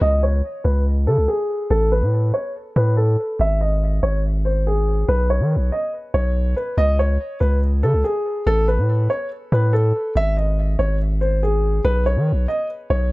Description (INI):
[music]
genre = hip hop, drill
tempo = 142 BPM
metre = 4/4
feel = half-time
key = unclear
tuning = A4 = 440 Hz
[part]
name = dark concert grand piano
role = melody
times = 0.0-13.1 s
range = G#4 to E5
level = -22 LUFS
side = equal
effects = low-pass filter, tape echo
[part]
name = long sustained 808-style bass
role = bass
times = 0.0-13.1 s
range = G#1 to D#3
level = -18 LUFS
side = equal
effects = none
[sound]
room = little or no reverb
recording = none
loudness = -17 LUFS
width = side -20 dB against mid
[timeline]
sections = 0.0-13.1 A section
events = filter sweep on grand piano 0.0-6.8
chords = 0.0 C#5; 1.7 Asus2; 3.4 G#5; 5.1 Bsus2; 6.8 C#5; 8.5 Asus2; 10.2 G#5; 11.8 Badd9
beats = | 0.01 0.44 0.86 1.28 | 1.71 2.13 2.55 2.97 | 3.40 3.82 4.24 4.66 | 5.08 5.51 5.93 6.35 | 6.78 7.20 7.62 8.04 | 8.46 8.89 9.31 9.73 | 10.15 10.58 11.00 11.42 | 11.85 12.27 12.69 13.11